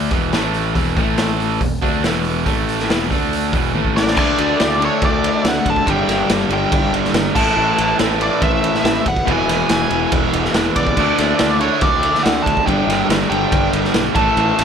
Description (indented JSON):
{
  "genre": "hard rock",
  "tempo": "141 BPM",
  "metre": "4/4",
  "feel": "straight",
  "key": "unclear",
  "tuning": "A4 = 439 Hz",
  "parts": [
    { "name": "distorted electric guitar", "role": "riff", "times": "0.0-14.6 s", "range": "E2 to D4", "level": "-22 LUFS", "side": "right 13 dB", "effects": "overdrive" },
    { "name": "overdriven semi-hollow guitar", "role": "riff", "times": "0.0-14.6 s", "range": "E2 to D4", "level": "-23 LUFS", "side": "left 13 dB", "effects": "none" },
    { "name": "modern bright fingered electric bass", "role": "bass", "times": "0.0-14.6 s", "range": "E1 to D2", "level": "-24 LUFS", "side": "equal", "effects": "none" },
    { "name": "raw garage drum kit", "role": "drums", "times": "0.1-14.6 s", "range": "crash cymbal, hi-hat, kick drum, ride cymbal, snare drum, toms", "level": "-19 LUFS", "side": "equal", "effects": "none" },
    { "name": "nasal lead guitar with a parked wah", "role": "melody", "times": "4.0-14.6 s", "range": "C#5 to A5", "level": "-20 LUFS", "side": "equal", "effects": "overdrive" },
    { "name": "lush unison pad", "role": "sustained chords", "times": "4.1-14.6 s", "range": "G3 to F#5", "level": "-31 LUFS", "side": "right 2 dB", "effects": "none" },
    { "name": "cranked stack guitar", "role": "riff", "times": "4.2-14.6 s", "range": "E2 to D4", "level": "-23 LUFS", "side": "right 1 dB", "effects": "overdrive" }
  ],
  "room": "light reverb, small room ambience",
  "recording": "none",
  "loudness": "-14 LUFS",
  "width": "side -7 dB against mid",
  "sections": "0.0-4.2 A section; 4.2-14.6 B section",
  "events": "drum fill 3.7-4.2",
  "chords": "0.1 E5; 0.3 A5; 0.8 E5; 1.0 A5; 1.6 E5; 2.5 A5; 2.9 E5; 3.1 D5; 3.5 E5; 3.7 A5; 4.2 D5; 5.9 G5; 7.4 A5; 9.3 E; 11.0 D5; 12.7 G5"
}